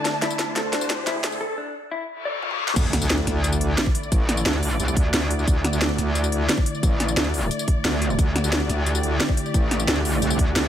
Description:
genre	dark technical drum and bass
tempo	177 BPM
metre	4/4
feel	straight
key	unclear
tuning	A4 = 441 Hz
part	sweeping resonant pad	sustained chords	0.0-10.7 s	D3 to D5	-28 LUFS	equal	chorus, sidechain pumping
part	mellow electric guitar	arpeggios	0.0-2.6 s	D4 to D5	-30 LUFS	left 2 dB	sidechain pumping, low-pass filter, tape echo
part	riser, reverse cymbal and impact	sound effects	0.0-4.1 s	none	-30 LUFS	left 1 dB	none
part	dark symphonic string section	texture	0.0-10.7 s	A3 to A5	-32 LUFS	left 3 dB	sidechain pumping
part	drum and bass drum kit	drums	0.1-10.6 s	crash cymbal, hi-hat, snare drum, tambourine, toms	-24 LUFS	equal	high-pass filter on hats, high-pass filter on snare, high-pass filter on perc, high-pass filter on toms, high-pass filter on cymbals
part	metallic wobble bass	bass	2.8-10.7 s	A1 to D2	-24 LUFS	equal	distortion, chorus, tube saturation, sidechain pumping
part	electronic kick drum	drums	2.8-10.5 s	none	-20 LUFS	equal	none
room	light reverb, digital ambience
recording	high-pass filter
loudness	-20 LUFS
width	side -10 dB against mid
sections	0.0-2.8 A section; 2.8-10.7 B section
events	build-up 0.0-2.8; drum fill 0.0-1.4, 2.4-2.8; riser 0.0-1.4; break 1.4-2.8; reverse cymbal 2.2-2.8; drop 2.8-10.7; impact 2.8-4.1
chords	0.0 D5

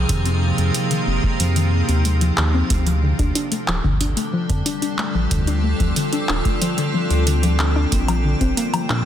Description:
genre	IDM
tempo	92 BPM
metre	4/4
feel	straight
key	unclear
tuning	A4 = 440 Hz
part	icy glass pad	sustained chords	0.0-9.1 s	C3 to A4	-23 LUFS	equal	chorus, built-in reverb, vintage 12-bit sampler grit
part	warbly dusty pluck	arpeggios	0.0-9.1 s	D3 to A4	-24 LUFS	left 3 dB	chorus, ping-pong delay
part	warm sub bass	bass	0.0-9.0 s	D1 to Bb2	-19 LUFS	equal	none
part	electro analog drum machine	drums	0.1-9.0 s	handclaps, hi-hat, woodblock	-25 LUFS	right 1 dB	none
part	electronic kick drum	drums	0.1-8.5 s	none	-22 LUFS	equal	none
room	light reverb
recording	dense, heavily limited modern master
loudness	-17 LUFS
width	side -10 dB against mid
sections	0.0-9.1 A section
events	filter sweep on synth arpeggio sound 0.0-9.1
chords	0.0 Fm7; 2.7 Dm; 7.9 Bbadd9

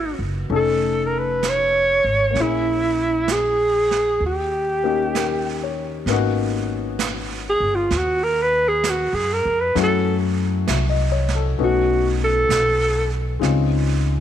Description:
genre	jazz ballad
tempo	65 BPM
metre	4/4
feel	swing 66% on 8ths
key	G# minor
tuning	A4 = 440 Hz
part	mellow alto saxophone	melody	0.0-13.1 s	E4 to C#5	-19 LUFS	right 1 dB	none
part	warm baby grand piano	accompaniment	0.0-14.2 s	F#3 to E5	-25 LUFS	left 12 dB	none
part	upright bass	bass	0.0-14.2 s	F1 to F#2	-24 LUFS	right 1 dB	none
part	jazz brush drum kit	drums	0.5-14.2 s	brushed snare drum, hi-hat, snare drum	-30 LUFS	right 8 dB	none
room	light reverb, studio ambience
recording	1960s-style stereo with parts hard left and right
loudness	-18 LUFS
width	side -10 dB against mid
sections	0.0-6.1 A section; 6.1-14.2 B section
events	alto saxophone solo 6.1-14.2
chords	0.0 G#m7; 0.5 F7alt; 2.4 A#m7b5; 4.2 D#7; 6.1 G#m11; 9.8 F#m7; 11.6 B9; 13.4 C#maj9

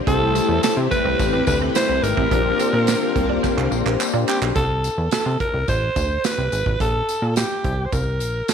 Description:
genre	early-eighties boogie funk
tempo	107 BPM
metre	4/4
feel	straight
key	unclear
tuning	A4 = 441 Hz
part	mellow synth brass	accompaniment	0.0-4.5 s	A3 to C5	-24 LUFS	left 11 dB	chorus
part	string machine, violins	sustained chords	0.0-4.5 s	C3 to B4	-27 LUFS	equal	ensemble chorus
part	breathy alto saxophone	melody	0.1-8.5 s	G4 to C5	-22 LUFS	right 1 dB	slapback echo
part	electric guitar at the edge of break-up	riff	0.1-4.4 s	A3 to E4	-29 LUFS	right 11 dB	analog chorus
part	plucky analog bass	bass	0.1-8.4 s	Ab1 to C3	-23 LUFS	equal	none
part	modern studio drum kit	drums	0.1-8.5 s	handclaps, hi-hat, kick drum, snare drum	-25 LUFS	right 3 dB	none
part	tambourine	percussion	0.1-8.5 s	none	-34 LUFS	left 13 dB	none
room	moderate echo chamber reverb, RT60 1.4 s, studio ambience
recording	1960s-style stereo with parts hard left and right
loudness	-18 LUFS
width	side -7 dB against mid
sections	0.0-4.6 A section; 4.6-8.5 B section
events	drum fill 3.4-4.6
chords	0.1 C6; 1.2 Am9; 2.3 Bb69; 4.6 C6; 5.7 Amadd9; 6.8 Bbsus2

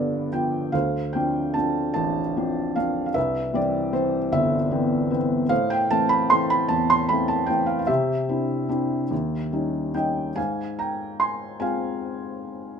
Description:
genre	classical, lyrical solo piano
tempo	50 BPM (dotted quarters)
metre	6/8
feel	uneven beats, rubato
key	unclear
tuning	A4 = 440 Hz
part	felt-muted upright piano	solo	0.0-12.8 s	G1 to C6	-21 LUFS	equal	none
room	moderate studio reverb, RT60 0.6 s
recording	minimal, uncompressed stereo recording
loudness	-21 LUFS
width	side -7 dB against mid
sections	0.7-10.4 A section; 10.4-12.8 B section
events	felt piano fill 0.0-0.7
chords	0.0 G7; 0.7 Dm7; 3.2 Cmaj7; 5.5 Am; 7.9 Cadd9; 9.1 Eb7; 10.4 Ab6

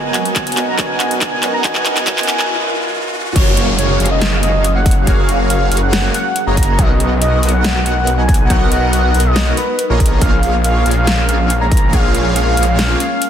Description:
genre	future bass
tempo	140 BPM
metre	4/4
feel	half-time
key	F# major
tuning	A4 = 441 Hz
part	warm velvety synth lead	melody	0.0-13.3 s	A#4 to A#5	-20 LUFS	equal	chorus, sidechain pumping, tape echo
part	warm grand piano	accompaniment	0.0-3.2 s	B3 to D#5	-24 LUFS	right 2 dB	sidechain pumping, ping-pong delay
part	shimmering ambient pad	sustained chords	0.0-13.3 s	B2 to E#5	-26 LUFS	left 1 dB	chorus, built-in reverb, phaser, sidechain pumping
part	soft supersaw	riff	0.0-13.0 s	A#3 to F#5	-21 LUFS	equal	phaser, sidechain pumping, low-pass filter
part	riser and downlifter	sound effects	0.1-6.8 s	none	-24 LUFS	equal	none
part	big-room dance drum kit	drums	0.1-13.3 s	crash cymbal, handclaps, hi-hat, snare drum	-19 LUFS	equal	none
part	electronic kick drum	drums	0.4-12.0 s	none	-14 LUFS	equal	none
part	wide detuned saw bass	bass	3.4-13.0 s	F#1 to B1	-16 LUFS	equal	chorus, sidechain pumping
room	light reverb, digital ambience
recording	dense, heavily limited modern master, high-pass filter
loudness	-12 LUFS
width	side -9 dB against mid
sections	0.0-3.4 A section; 3.4-13.3 B section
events	build-up 0.0-3.4; drum fill 0.0-2.5; filter sweep on supersaw synth 0.0-3.4; riser 0.1-3.4; break 2.5-3.4; drop 3.4-13.3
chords	0.0 Bmaj7; 3.1 F#maj9; 6.8 Bmaj7; 10.0 A#m7

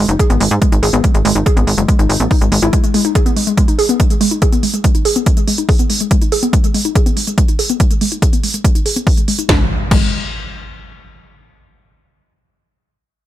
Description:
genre	driving peak-time techno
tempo	142 BPM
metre	4/4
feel	straight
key	G# minor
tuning	A4 = 440 Hz
part	warbly dusty pluck	riff	0.0-10.1 s	G#3 to G#4	-17 LUFS	equal	chorus, sidechain pumping, dub echo
part	tight sequencer bass	bass	0.0-2.7, 9.5-10.1 s	F#1 to G#2	-16 LUFS	equal	tube saturation, sidechain pumping
part	techno drum kit	drums	0.1-10.0 s	crash cymbal, hi-hat, snare drum	-20 LUFS	right 2 dB	sidechain pumping on hats, sidechain pumping on cymbals
part	electronic kick drum	drums	0.2-10.0 s	none	-13 LUFS	equal	overdrive
part	impact	sound effects	9.5-11.2 s	none	-22 LUFS	equal	none
room	light reverb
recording	none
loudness	-11 LUFS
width	side -13 dB against mid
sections	0.0-9.5 A section; 9.5-11.2 B section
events	filter sweep on synth arpeggio sound 0.0-9.5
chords	0.0 G#5; 9.5 N.C.

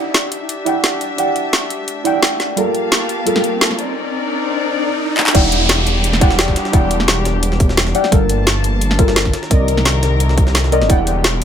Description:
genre	liquid drum and bass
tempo	173 BPM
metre	4/4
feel	swing 53% on 16ths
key	E minor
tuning	A4 = 436 Hz
part	deep mellow chord stab	accompaniment	0.0-11.4 s	G3 to G5	-19 LUFS	right 1 dB	chorus, digital delay
part	dark studio string section	sustained chords	0.0-11.4 s	D3 to A5	-23 LUFS	left 3 dB	sidechain pumping
part	riser and downlifter	sound effects	0.0-8.1 s	none	-23 LUFS	equal	none
part	garage drum kit	drums	0.1-11.4 s	crash cymbal, handclaps, hi-hat, snare drum	-17 LUFS	equal	none
part	swelling detuned saw bass	bass	5.3-11.4 s	E1 to C2	-17 LUFS	equal	none
part	electronic kick drum	drums	5.3-11.0 s	none	-14 LUFS	equal	none
part	jungle sampler-style drum kit	drums	5.3-11.4 s	hi-hat, snare drum	-24 LUFS	equal	high-pass filter on snare, high-pass filter on hats
room	light reverb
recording	none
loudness	-13 LUFS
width	side -8 dB against mid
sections	0.0-5.3 A section; 5.3-11.4 B section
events	build-up 0.0-5.3; riser 0.0-5.3; drum fill 5.2; drop 5.3-11.4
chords	0.0 Em9; 2.6 Gm9; 3.8 Cm9; 5.3 Em9; 8.1 Gm9; 9.3 Cm9; 10.9 Em9

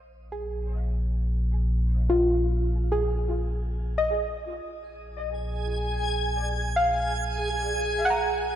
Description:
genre	ambient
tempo	free time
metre	none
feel	none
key	unclear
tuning	A4 = 440 Hz
part	soft round pluck	arpeggios	0.0-8.6 s	F4 to Bb5	-27 LUFS	equal	chorus, diffuse ambient delay, shimmer reverb
part	round analog bass	bass	0.0-8.6 s	Bb1	-28 LUFS	equal	none
part	backwards swelling texture	texture	5.5-8.6 s	Ab4 to Ab5	-28 LUFS	right 2 dB	built-in reverb, shimmer reverb
room	wet lush hall reverb, RT60 2.7 s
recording	none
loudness	-24 LUFS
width	side -10 dB against mid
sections	0.0-8.6 A section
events	fade-out on analog synth bass 0.0-8.6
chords	0.0 Bb7sus4; 4.6 Ab5/Bb

